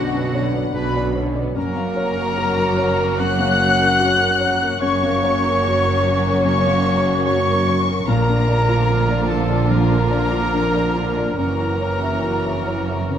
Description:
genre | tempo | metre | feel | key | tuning
cinematic, emotional film score for orchestra | 74 BPM | 4/4 | rubato | unclear | A4 = 441 Hz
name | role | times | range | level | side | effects
muted studio violin section | melody | 0.0-13.2 s | F#5 to F#6 | -25 LUFS | left 3 dB | none
clear oboe | second line | 0.0-13.2 s | F#4 to F#5 | -27 LUFS | right 1 dB | none
mellow clarinet | second line | 0.0-13.2 s | F#4 to F#5 | -26 LUFS | left 1 dB | none
mellow silver concert flute | second line | 0.0-13.2 s | F#5 to F#6 | -27 LUFS | left 3 dB | none
muted studio violin section | second line | 0.0-13.2 s | B3 to F#4 | -29 LUFS | left 2 dB | none
felt-muted upright piano | accompaniment | 0.0-13.2 s | B1 to E5 | -25 LUFS | left 3 dB | none
muted studio viola section | accompaniment | 0.0-13.2 s | D3 to C#4 | -26 LUFS | right 2 dB | none
dark French horn section | sustained chords | 0.0-13.2 s | D3 to D4 | -26 LUFS | left 3 dB | none
muted studio cello section | bass | 0.0-13.2 s | F#2 to B2 | -27 LUFS | right 4 dB | none
muted studio double bass section | bass | 0.0-13.2 s | F#1 to B1 | -24 LUFS | right 4 dB | none
room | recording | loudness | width
moderate concert hall reverb, RT60 1.9 s | none | -16 LUFS | side -9 dB against mid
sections
0.0-13.2 A section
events
none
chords
0.0 Bmadd9; 1.6 F#; 8.1 Bb; 11.4 F#7

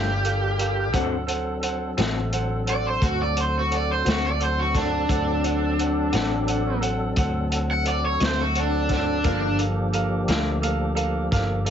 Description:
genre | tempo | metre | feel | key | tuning
slow blues | 58 BPM (dotted quarters) | 12/8 | straight | unclear | A4 = 440 Hz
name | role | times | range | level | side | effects
raw garage guitar | melody | 0.0-9.6 s | D4 to F#5 | -24 LUFS | equal | overdrive
bright upright piano | accompaniment | 0.0-11.7 s | A4 to F#5 | -30 LUFS | right 3 dB | none
electric guitar through a small old amp | accompaniment | 0.0-10.5 s | G2 to F#4 | -30 LUFS | left 7 dB | harmonic tremolo
tonewheel organ | sustained chords | 0.0-11.7 s | F3 to Bb4 | -30 LUFS | left 1 dB | slow rotary speaker, overdrive, chorus vibrato
vintage muted fingered electric bass | bass | 0.0-11.7 s | G1 to D2 | -26 LUFS | equal | none
crunchy breakbeat drum kit | drums | 0.2-11.7 s | hi-hat, kick drum, snare drum | -28 LUFS | equal | none
room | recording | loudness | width
moderate club reverb, RT60 0.6 s | heavily compressed radio sound, multiband compression, nothing above 7.7 kHz | -21 LUFS | side -8 dB against mid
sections
0.0-11.7 A section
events
overdriven electric guitar solo 0.0-11.7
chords
0.0 Gm7; 0.9 D7; 9.2 Gm7

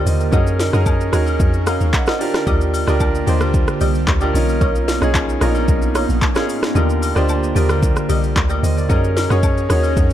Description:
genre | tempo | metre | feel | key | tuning
amapiano | 112 BPM | 4/4 | straight | unclear | A4 = 439 Hz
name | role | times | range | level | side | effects
warm concert grand piano | accompaniment | 0.0-10.1 s | D3 to Gb5 | -21 LUFS | right 2 dB | none
airy breathy pad | sustained chords | 0.0-10.1 s | D3 to Bb4 | -25 LUFS | equal | chorus, sidechain pumping
punchy chord stab | stabs | 0.0-9.8 s | E#4 to Eb5 | -27 LUFS | equal | chorus, phaser, digital delay
deep log drum bass | bass | 0.0-10.1 s | A#1 to Gb2 | -18 LUFS | equal | none
afro-pop drum kit | drums | 0.1-10.1 s | handclaps, hi-hat, kick drum, rim click, shaker, snare drum | -20 LUFS | equal | none
agogo bells and woodblock | percussion | 0.3-10.0 s | none | -30 LUFS | left 7 dB | none
room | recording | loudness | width
digital ambience | dark, warm production | -14 LUFS | side -11 dB against mid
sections
0.0-10.1 A section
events
kick muted 6.8-7.8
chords
0.3 Gb6; 2.2 Ebmaj7; 4.3 Bmaj9#11; 6.8 Ebmaj7; 8.9 Gb6

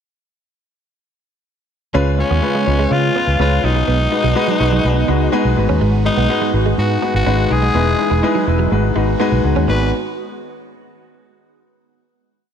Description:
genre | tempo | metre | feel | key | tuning
pop | 124 BPM | 4/4 | straight | G# minor | A4 = 440 Hz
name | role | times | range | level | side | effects
clear baby grand piano | accompaniment | 1.9-9.9 s | G#1 to B4 | -18 LUFS | left 3 dB | none
phased analog pad | sustained chords | 1.9-9.9 s | C#3 to F#4 | -25 LUFS | right 4 dB | phaser, chorus
direct-recorded clean electric guitar | riff | 1.9-9.8 s | F#3 to C#4 | -25 LUFS | right 8 dB | analog chorus
vintage muted fingered electric bass | bass | 1.9-9.9 s | E1 to C#3 | -17 LUFS | right 1 dB | none
raspy tenor saxophone | melody | 2.2-9.9 s | C#4 to B4 | -20 LUFS | left 2 dB | digital delay
room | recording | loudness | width
light reverb, studio ambience | dark, warm production | -13 LUFS | side -8 dB against mid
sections
1.9-9.7 chorus; 9.7-11.6 final chord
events
none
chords
1.9 C#7; 3.6 B6; 5.6 G#m7; 7.7 Emaj7; 8.7 G#m7

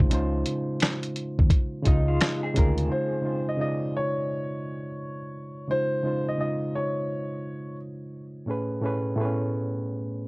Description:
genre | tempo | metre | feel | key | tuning
lo-fi hip hop | 86 BPM | 4/4 | swing 66% on 16ths | unclear | A4 = 440 Hz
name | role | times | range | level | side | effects
overdriven reed electric piano | accompaniment | 0.0-10.3 s | A2 to Eb5 | -28 LUFS | right 1 dB | none
vintage muted fingered electric bass | bass | 0.0-2.9 s | Db2 to Eb2 | -25 LUFS | equal | none
dusty soul sampler-style drum kit | drums | 0.0-2.9 s | finger snaps, hi-hat, kick drum, snare drum | -22 LUFS | equal | none
electric guitar through a small old amp | second line | 1.9-3.4 s | Ab3 to Ab4 | -35 LUFS | left 1 dB | tremolo, tape echo
warm upright piano | melody | 2.9-7.8 s | C5 to Eb5 | -30 LUFS | left 1 dB | none
room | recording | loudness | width
light reverb | worn, warbling old tape, cassette tape, warbly pitch drift | -24 LUFS | side -26 dB against mid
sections
0.0-2.9 A section; 2.9-10.3 B section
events
none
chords
0.0 Dbmaj9; 8.5 Amaj9

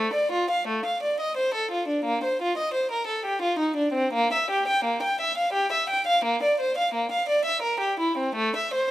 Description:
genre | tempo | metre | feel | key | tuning
classical, baroque-style suite movement for unaccompanied violin | 86 BPM | 3/4 | rubato | Bb major | A4 = 440 Hz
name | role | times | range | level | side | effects
rich violin | solo | 0.0-8.9 s | A3 to G5 | -23 LUFS | equal | none
room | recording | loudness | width
light reverb | close, detailed microphones | -23 LUFS | side -14 dB against mid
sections
0.0-8.9 A section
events
none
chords
none

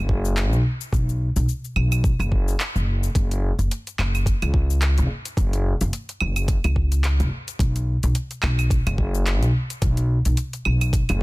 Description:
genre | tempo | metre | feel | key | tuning
sunset chillout | 108 BPM | 4/4 | swing 57% on 16ths | unclear | A4 = 438 Hz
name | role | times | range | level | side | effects
upright bass | bass | 0.0-11.2 s | F#1 to C#2 | -21 LUFS | equal | none
electronic kick drum | drums | 0.1-11.1 s | none | -22 LUFS | equal | none
smooth R&B drum kit | drums | 0.2-11.2 s | claves, handclaps, hi-hat, shaker | -29 LUFS | right 1 dB | none
room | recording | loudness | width
digital ambience | dense, heavily limited modern master | -20 LUFS | side -21 dB against mid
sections
0.0-11.2 A section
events
none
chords
none

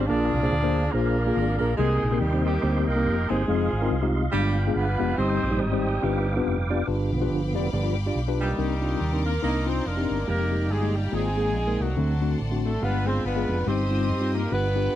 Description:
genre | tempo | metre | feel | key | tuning
gospel | 141 BPM | 4/4 | swing 57% on 8ths | C minor | A4 = 441 Hz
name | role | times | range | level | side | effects
mellow horn section | melody | 0.0-15.0 s | F#3 to D5 | -27 LUFS | right 1 dB | none
tine electric piano | accompaniment | 0.0-15.0 s | G2 to D5 | -27 LUFS | left 3 dB | medium stereo tremolo
tonewheel organ | sustained chords | 0.0-8.0 s | D3 to Eb6 | -32 LUFS | right 4 dB | slow rotary speaker, chorus vibrato
fingered electric bass | bass | 0.0-14.9 s | F1 to G2 | -26 LUFS | right 1 dB | none
bright studio string section | sustained chords | 6.9-15.0 s | D5 to Eb6 | -38 LUFS | left 4 dB | none
room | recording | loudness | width
studio ambience | dry, close 1970s-style studio recording | -22 LUFS | side -12 dB against mid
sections
0.0-6.9 A section; 6.9-8.6 B section; 8.6-15.0 C section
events
tonewheel organ solo 6.9-8.6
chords
0.1 Bb7; 1.8 Cm7; 3.5 Fm7; 4.3 G7b9; 5.2 Cm/G; 6.0 G7; 8.6 Cm9; 10.3 Fm11; 12.0 D7; 12.8 G7b9; 13.7 Cm/G

